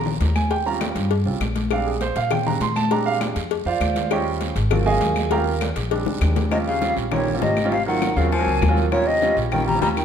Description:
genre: Afro-Cuban jazz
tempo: 200 BPM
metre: 4/4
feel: straight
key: Eb mixolydian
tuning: A4 = 440 Hz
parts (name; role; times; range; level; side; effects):
- clear grand piano; accompaniment; 0.0-10.0 s; Gb3 to C6; -24 LUFS; right 6 dB; none
- upright bass; bass; 0.0-10.0 s; Ab1 to Bb2; -24 LUFS; equal; none
- congas; percussion; 0.1-10.0 s; none; -28 LUFS; left 3 dB; none
- cowbell and bongos; percussion; 0.2-10.0 s; none; -29 LUFS; left 9 dB; none
- guiro; percussion; 0.2-10.0 s; none; -38 LUFS; right 6 dB; none
- claves; percussion; 0.4-10.0 s; none; -36 LUFS; left 7 dB; none
- hollow concert flute; melody; 6.5-10.0 s; Db5 to Bb5; -22 LUFS; left 1 dB; none
- clear baritone saxophone; second line; 6.5-10.0 s; Bb2 to G3; -27 LUFS; left 4 dB; none
room: moderate large studio reverb, RT60 1.4 s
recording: minimal, uncompressed stereo recording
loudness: -18 LUFS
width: side -8 dB against mid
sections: 0.0-6.5 A section; 6.5-10.0 B section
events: grand piano solo 0.0-6.5; drum fill 6.1-6.5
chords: 0.0 Eb13; 1.7 Bb13; 4.1 Eb13; 4.7 Ab13; 5.3 Eb13; 5.9 Bb13; 6.5 Eb13; 7.7 Ab13; 8.9 Eb13

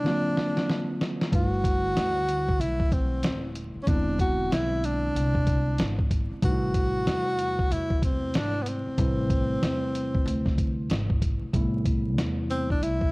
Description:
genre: hip hop, jazz-hop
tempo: 94 BPM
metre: 4/4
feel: swing 62% on 16ths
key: A dorian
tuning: A4 = 440 Hz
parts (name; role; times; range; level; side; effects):
- mellow tenor saxophone; melody; 0.0-13.1 s; B3 to F#4; -28 LUFS; equal; cassette tape
- mellow tine electric piano; accompaniment; 0.0-13.1 s; C3 to B4; -31 LUFS; equal; medium stereo tremolo, cassette tape
- dusty soul sampler-style drum kit; drums; 0.1-13.1 s; hi-hat, kick drum, snare drum; -27 LUFS; equal; none
- upright bass; bass; 1.3-13.1 s; D#1 to E2; -30 LUFS; equal; none
room: light reverb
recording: home recording on cassette, vinyl crackle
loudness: -23 LUFS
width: side -25 dB against mid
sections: 0.0-11.5 A section; 11.5-13.1 B section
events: drum fill 0.0-1.3; tenor saxophone solo 11.5-13.1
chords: 0.0 D7alt; 1.3 G69; 3.9 E7b13; 6.4 Am7

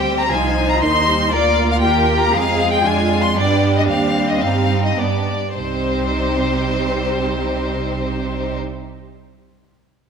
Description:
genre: quick classical-period movement for string orchestra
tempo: 99-120 BPM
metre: 2/4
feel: rubato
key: C minor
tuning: A4 = 440 Hz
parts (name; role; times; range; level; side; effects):
- rich chamber violin section; melody; 0.0-8.6 s; C5 to C6; -20 LUFS; left 4 dB; none
- clear chamber violin section; second line; 0.0-8.6 s; B3 to C5; -25 LUFS; left 2 dB; none
- rich chamber viola section; accompaniment; 0.0-8.6 s; Eb3 to F4; -22 LUFS; right 1 dB; none
- clear chamber cello section; bass; 0.0-8.6 s; C3 to Ab4; -26 LUFS; right 4 dB; none
- rich chamber double bass section; bass; 0.0-8.6 s; C2 to G2; -22 LUFS; right 4 dB; none
room: moderate scoring stage reverb, RT60 1.8 s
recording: minimal, uncompressed stereo recording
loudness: -15 LUFS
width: side -6 dB against mid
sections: 0.0-5.6 A section; 5.6-7.8 B section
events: slowing down 2.8-5.6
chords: 0.3 Cm; 1.3 Bb/D; 1.8 Eb; 2.3 Fm; 2.8 Ddim/F; 3.4 G; 3.9 Cm/Eb; 4.4 Cm/G; 5.0 G; 5.6 Cm

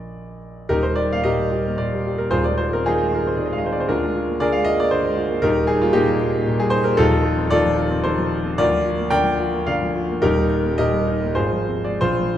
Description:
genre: classical, romantic character piece for solo piano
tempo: 87-119 BPM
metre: 3/4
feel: rubato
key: Eb major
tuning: A4 = 439 Hz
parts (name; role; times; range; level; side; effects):
- warm concert grand piano; solo; 0.0-12.4 s; Eb1 to G5; -18 LUFS; equal; none
room: wet recital hall reverb, RT60 1.6 s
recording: none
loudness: -17 LUFS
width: side -11 dB against mid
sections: 0.7-12.4 A section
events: none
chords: 0.0 Bb; 0.7 Eb; 2.3 Fm7/Eb; 3.9 Bb7/D; 5.4 Eb; 7.0 F7/Eb; 8.6 Bb/D; 10.2 Eb; 11.4 Fm/Ab

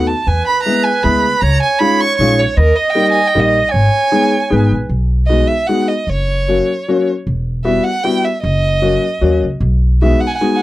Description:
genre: musette waltz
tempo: 154 BPM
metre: 3/4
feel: swing 54% on 8ths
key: G# minor, B major from 4.9 s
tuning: A4 = 440 Hz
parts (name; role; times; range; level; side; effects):
- rich violin; melody; 0.0-10.6 s; A#4 to C#6; -17 LUFS; right 2 dB; none
- warm upright piano; accompaniment; 0.0-10.6 s; F#3 to G#4; -16 LUFS; left 3 dB; none
- upright bass; bass; 0.0-10.1 s; E1 to E2; -15 LUFS; equal; none
- warm clarinet; second line; 0.3-4.9 s; B4 to D#5; -16 LUFS; right 4 dB; none
room: little or no reverb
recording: dry, close 1970s-style studio recording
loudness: -12 LUFS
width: side -16 dB against mid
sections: 0.0-4.9 A section; 4.9-10.6 B section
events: none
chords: 0.3 E; 1.4 C#add9; 2.6 D#; 3.7 G#m; 4.9 B6; 6.1 F#; 7.3 Emadd9; 8.4 F#; 9.6 B6

